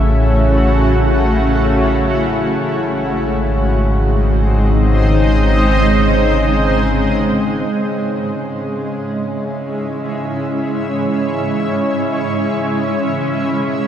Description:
ambient; free time; C# minor; A4 = 440 Hz
granular cloud pad; sustained chords; 0.0-13.9 s; B2 to E5; -16 LUFS; equal; built-in reverb, shimmer reverb
round analog bass; bass; 0.0-7.7 s; G#1 to A1; -16 LUFS; equal
pedal harmonium; drone; 0.0-13.9 s; C#3; -23 LUFS; left 1 dB
wet lush hall reverb, RT60 2.8 s; dark, warm production; -14 LUFS; side -10 dB against mid
0.0-7.7 A section; 7.7-13.9 B section
filter sweep on ambient pad 0.0-7.7
0.0 A6; 2.6 G#; 7.7 C#m; 12.8 E6/B

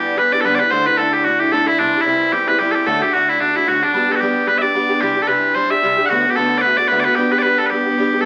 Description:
celtic folk, Celtic reel; 223 BPM; 4/4; swing 57% on 8ths; G major; A4 = 440 Hz
loud bright bagpipes; melody; 0.0-8.3 s; D4 to F#5; -17 LUFS; equal
picked steel-string acoustic guitar; accompaniment; 0.0-8.2 s; D2 to G4; -22 LUFS; equal
wet club reverb, RT60 0.7 s; very old 78 rpm record, vinyl crackle; -16 LUFS; mono
0.0-8.2 A section
0.0 G6; 0.7 Dsus2; 1.8 C; 2.9 D; 3.9 G; 5.0 Cadd9; 6.1 D6; 7.2 G

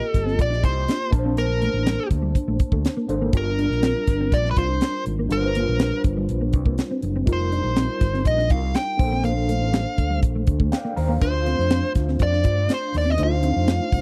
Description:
polished 1980s jazz-funk pop; 122 BPM; 4/4; straight; G minor; A4 = 440 Hz
nasal lead guitar with a parked wah; melody; 0.0-14.0 s; Bb4 to G5; -28 LUFS; equal; overdrive
overdriven tine electric piano; accompaniment; 0.0-14.0 s; G3 to Bb5; -30 LUFS; equal; fast tremolo, ensemble chorus
mellow electric guitar; riff; 0.0-13.8 s; G3 to G4; -32 LUFS; equal; ensemble chorus
overdriven fingered electric bass; bass; 0.1-14.0 s; F1 to G2; -26 LUFS; equal
tight funk drum kit; drums; 0.1-14.0 s; hi-hat, kick drum, snare drum; -23 LUFS; equal
small room ambience; dry, close 1970s-style studio recording; -22 LUFS; mono
0.0-14.0 A section
tine electric piano fill 10.5-11.2
0.0 F9sus4; 1.1 Bbmaj9; 3.3 Gm7; 7.3 F9sus4; 9.0 Bbmaj9; 11.2 Dm7

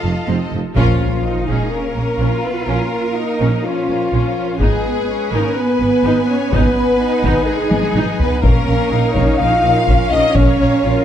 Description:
cinematic, epic orchestral film score; 125 BPM; 4/4; straight; Bb phrygian; A4 = 441 Hz
warm chamber violin section; melody; 0.0-11.0 s; F5 to Ab5; -29 LUFS; left 5 dB
bright symphonic violin section; second line; 0.0-11.0 s; F4 to F5; -24 LUFS; left 3 dB
rich symphonic viola section; accompaniment; 0.0-11.0 s; F3 to Cb5; -25 LUFS; equal
mellow tuba; bass; 0.0-0.6 s; F1; -25 LUFS; right 3 dB
rich symphonic cello section; bass; 0.0-11.0 s; F2 to F4; -22 LUFS; right 2 dB
rich symphonic double bass section; bass; 0.0-10.9 s; F1 to Bb1; -20 LUFS; right 2 dB
clear trombone section; sustained chords; 0.8-11.0 s; F3 to F4; -22 LUFS; right 3 dB
mellow French horn section; sustained chords; 0.8-11.0 s; F4 to F5; -21 LUFS; left 3 dB
taiko ensemble; drums; 0.8-1.7, 4.6-10.8 s; -18 LUFS; left 1 dB
timpani; percussion; 0.8-1.4 s; Bb2; -25 LUFS; left 1 dB
sub drop; sound effects; 1.0-2.7 s; -26 LUFS; left 1 dB
moderate scoring stage reverb, RT60 1.8 s; dark, warm production; -14 LUFS; side -10 dB against mid
0.8-11.0 A section
band accent 0.8-1.2; impact 0.8-2.7; drum fill 7.7-8.4
0.0 F7; 0.8 Bbm; 4.6 Abm; 8.4 Bbm

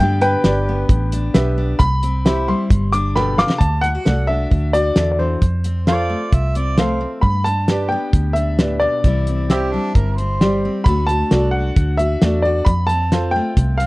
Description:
honky-tonk and classic country; 132 BPM; 4/4; straight; G major; A4 = 440 Hz
clear upright piano; melody; 0.0-13.9 s; B4 to D6; -21 LUFS; equal
picked steel-string acoustic guitar; accompaniment; 0.0-13.9 s; F2 to G4; -24 LUFS; left 2 dB
vintage muted fingered electric bass; bass; 0.0-13.9 s; G1 to G2; -19 LUFS; equal
damped 70s drum kit; drums; 0.2-13.9 s; hi-hat, kick drum, snare drum; -15 LUFS; equal
warm grand piano; accompaniment; 0.4-13.5 s; F4 to G5; -24 LUFS; right 2 dB
mellow harmonica; second line; 5.9-10.7 s; C4 to E5; -26 LUFS; right 2 dB
little or no reverb; worn, warbling old tape, cassette tape, warbly pitch drift; -15 LUFS; side -21 dB against mid
0.0-3.6 A section; 3.6-13.9 B section
upright piano solo 0.0-3.6; drum fill 3.2-3.6
0.0 G; 1.8 C; 2.7 Gadd9; 3.6 D; 5.4 F; 7.2 G; 9.0 C; 10.9 D; 12.7 F

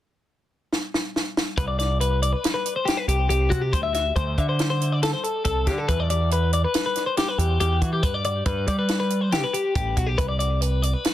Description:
math rock and midwest emo; 140 BPM; 5/4; straight; A4 = 439 Hz
compact cocktail drum kit; drums; 0.7-11.1 s; hi-hat, kick drum, snare drum; -26 LUFS; right 1 dB
twelve-string electric guitar; arpeggios; 1.6-11.1 s; F#4 to E5; -24 LUFS; left 4 dB; digital delay, plate reverb
overdriven picked electric bass; bass; 1.6-10.9 s; A1 to G3; -23 LUFS; right 1 dB
light reverb; dense, heavily limited modern master; -21 LUFS; side -13 dB against mid
0.0-1.6 A section; 1.6-11.1 B section
drum fill 0.7-1.6
0.0 N.C.; 1.6 Csus2; 3.7 Dsus2; 5.9 Em7; 8.0 G; 10.2 Csus2

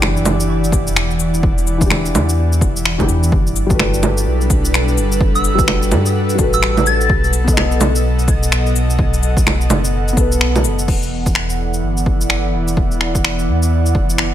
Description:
future garage; 127 BPM; 4/4; swing 61% on 16ths; E minor; A4 = 438 Hz
felt-muted upright piano; accompaniment; 0.0-10.9 s; E3 to D#5; -22 LUFS; left 3 dB; sidechain pumping, tape echo
airy breathy pad; sustained chords; 0.0-14.3 s; B2 to F#5; -22 LUFS; right 1 dB; chorus, sidechain pumping
dark detuned saw bass; bass; 0.0-14.3 s; E1 to G2; -18 LUFS; equal; sidechain pumping
deep house drum kit; drums; 0.0-14.3 s; bongos, cabasa, crash cymbal, finger snaps, shaker; -19 LUFS; right 1 dB; overdrive, studio reverb
electronic kick drum; drums; 0.7-14.1 s; -18 LUFS; equal; overdrive, studio reverb
soft synth bell; melody; 5.4-7.2 s; E6 to A6; -23 LUFS; right 1 dB; chorus, phaser, ping-pong delay
light reverb; -13 LUFS; side -11 dB against mid
0.0-10.9 A section; 10.9-14.3 B section
0.0 Em7; 3.3 Gmaj9; 7.1 B7; 10.9 Em7

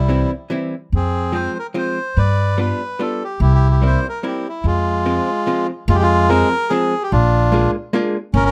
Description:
musette waltz; 145 BPM; 3/4; swing 55% on 8ths; F harmonic minor; A4 = 441 Hz
bandoneon; melody; 0.0-8.5 s; G3 to D5; -21 LUFS; equal; plate reverb
upright bass; bass; 0.0-8.5 s; G1 to G2; -18 LUFS; equal
archtop guitar, miked and amplified; accompaniment; 0.1-8.2 s; E3 to Ab4; -23 LUFS; equal
light reverb; close, detailed microphones; -18 LUFS; mono
0.0-5.9 A section; 5.9-8.5 A section
0.0 C; 0.9 Fm; 2.2 G7; 3.4 C7; 4.6 Fm; 7.1 Bb7

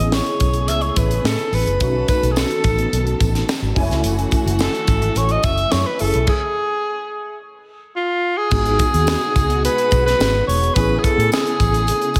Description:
polished 1980s jazz-funk pop; 107 BPM; 4/4; straight; A4 = 443 Hz
breathy alto saxophone; melody; 0.0-12.2 s; E#4 to E5; -22 LUFS; equal
barky tine electric piano; accompaniment; 0.0-12.2 s; G#3 to G#5; -27 LUFS; equal; overdrive, ensemble chorus, slapback echo
warm studio string section; sustained chords; 0.0-12.2 s; B2 to A4; -32 LUFS; equal
vintage muted fingered electric bass; bass; 0.0-12.2 s; E1 to A2; -23 LUFS; equal
tight funk drum kit; drums; 0.1-12.2 s; crash cymbal, hi-hat, kick drum, snare drum; -23 LUFS; equal
tambourine; percussion; 0.1-12.2 s; -41 LUFS; equal
moderate lush hall reverb, RT60 2.0 s, small room ambience; big arena sound; -18 LUFS; mono
0.0-8.5 A section; 8.5-12.2 B section
stop 6.3-8.5
0.0 Amaj7; 1.8 B7; 3.8 F#m7; 6.3 N.C.; 8.5 G#m7; 10.8 Amaj7

